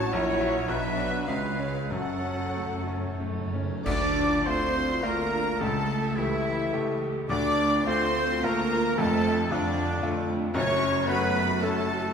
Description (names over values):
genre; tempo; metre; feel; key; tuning
classical, romantic movement for piano and orchestra; 92-115 BPM; 3/4; rubato; F# minor, D minor from 3.9 s; A4 = 439 Hz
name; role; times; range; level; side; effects
clear grand piano; melody; 0.0-12.1 s; F1 to E5; -30 LUFS; left 2 dB; none
rich studio violin section; melody; 0.0-12.1 s; C#5 to D6; -37 LUFS; left 3 dB; none
clear clarinet; second line; 0.0-12.1 s; C#4 to D5; -34 LUFS; equal; none
silver concert flute; second line; 0.0-12.1 s; C#5 to D6; -37 LUFS; left 1 dB; none
warm oboe; second line; 0.0-12.1 s; D4 to D5; -36 LUFS; equal; none
warm symphonic violin section; second line; 0.0-12.1 s; C#4 to D5; -38 LUFS; left 2 dB; none
mellow bassoon; accompaniment; 0.0-3.5 s; F#3 to G#3; -38 LUFS; right 3 dB; none
warm studio viola section; accompaniment; 0.0-12.1 s; F#3 to G4; -36 LUFS; right 2 dB; none
dark French horn section; sustained chords; 0.0-12.1 s; D3 to E4; -34 LUFS; left 3 dB; none
warm trumpet; stabs; 0.0-12.1 s; D4 to D5; -33 LUFS; right 2 dB; none
clear chamber double bass section; bass; 0.0-12.1 s; F#1 to F#2; -36 LUFS; right 3 dB; none
rich chamber cello section; bass; 0.0-12.1 s; F#2 to D4; -34 LUFS; right 4 dB; none
cymbal swell, clash cymbals and concert bass drum; percussion; 0.1-5.0 s; none; -38 LUFS; right 1 dB; none
timpani; percussion; 1.9-6.4 s; F#2 to C#3; -36 LUFS; equal; none
room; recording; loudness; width
wet scoring stage reverb, RT60 1.6 s; minimal, uncompressed stereo recording; -24 LUFS; side -7 dB against mid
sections
0.0-3.9 A section; 3.9-12.1 B section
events
timpani fill 1.9-3.9; band accent 3.9-4.5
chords
0.1 F#7/A#; 0.7 Bm; 1.3 C#7; 1.9 F#m; 3.9 Dm; 5.6 A7/C#; 7.3 Dm; 9.0 Dm/F; 10.6 F#m